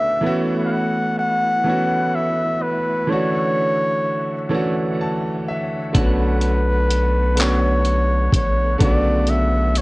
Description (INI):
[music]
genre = slow six-eight R&B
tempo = 42 BPM (dotted quarters)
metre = 6/8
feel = straight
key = B minor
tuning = A4 = 440 Hz
[part]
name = clear flugelhorn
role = melody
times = 0.0-9.8 s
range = B4 to F#5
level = -21 LUFS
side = equal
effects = none
[part]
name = clear grand piano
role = accompaniment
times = 0.0-9.8 s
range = C#3 to A5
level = -22 LUFS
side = right 1 dB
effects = none
[part]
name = percussive tonewheel organ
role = sustained chords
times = 0.0-9.8 s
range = D3 to F#5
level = -30 LUFS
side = equal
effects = chorus vibrato, slow rotary speaker
[part]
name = dusty soul sampler-style drum kit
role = drums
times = 5.9-9.8 s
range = handclaps, hi-hat, kick drum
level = -19 LUFS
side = equal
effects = none
[part]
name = rubbery square bass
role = bass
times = 6.0-9.8 s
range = A#1 to B1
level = -19 LUFS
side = equal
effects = none
[sound]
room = light reverb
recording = worn, warbling old tape, cassette tape, warbly pitch drift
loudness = -17 LUFS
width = side -22 dB against mid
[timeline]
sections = 0.0-9.8 A section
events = grand piano fill 4.5-5.9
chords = 0.2 A6; 3.1 Dmaj9; 5.9 Bm9